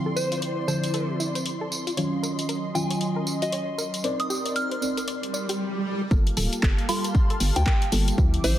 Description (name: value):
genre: deep house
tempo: 116 BPM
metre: 4/4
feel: swing 60% on 16ths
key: G minor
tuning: A4 = 440 Hz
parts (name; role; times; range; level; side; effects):
- warm analog pad; sustained chords; 0.0-8.6 s; Gb3 to D6; -34 LUFS; right 1 dB; chorus, sidechain pumping
- deep mellow chord stab; stabs; 0.0-8.6 s; D3 to D5; -30 LUFS; equal; chorus, phaser, sidechain pumping, tape echo
- muted symphonic violin section; texture; 0.0-5.6 s; C6; -40 LUFS; left 1 dB; sidechain pumping
- soft round pluck; arpeggios; 0.1-8.5 s; E4 to D5; -35 LUFS; left 1 dB; chorus, sidechain pumping, tape echo
- soft synth bell; melody; 0.2-8.6 s; C5 to F6; -31 LUFS; equal; chorus, tape echo
- house drum kit; drums; 0.2-8.6 s; handclaps, hi-hat, tambourine; -31 LUFS; equal; small room ambience
- swell; sound effects; 5.3-6.1 s; none; -29 LUFS; right 1 dB; none
- hollow knocking FM bass; bass; 6.1-8.5 s; D1 to D2; -24 LUFS; equal; sidechain pumping
- electronic kick drum; drums; 6.1-8.3 s; none; -21 LUFS; equal; small room ambience
room: moderate echo chamber reverb, RT60 1.4 s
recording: dense, heavily limited modern master, vinyl crackle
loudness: -23 LUFS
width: side -12 dB against mid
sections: 0.0-6.1 A section; 6.1-8.6 B section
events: swell 5.3-6.1; drop 6.1-8.6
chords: 0.0 Dm9; 2.0 Ebm9; 4.0 Cm9; 6.1 Gm9